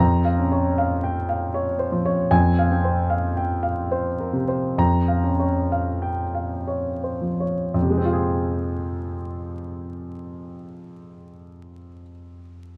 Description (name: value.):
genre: classical, romantic character piece for solo piano.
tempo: 52-79 BPM.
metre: 3/4.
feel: rubato.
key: F minor.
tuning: A4 = 440 Hz.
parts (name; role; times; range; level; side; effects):
clear concert grand piano; solo; 0.0-12.8 s; F2 to Bb5; -23 LUFS; equal; none.
room: light reverb.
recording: close, detailed microphones, vinyl crackle.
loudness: -23 LUFS.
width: mono.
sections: 0.0-7.7 A section; 7.7-10.6 B section.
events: slowing down 1.2-7.7.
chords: 0.0 Bbm/F; 2.3 Fm; 4.8 Bbm/F; 7.7 Fm.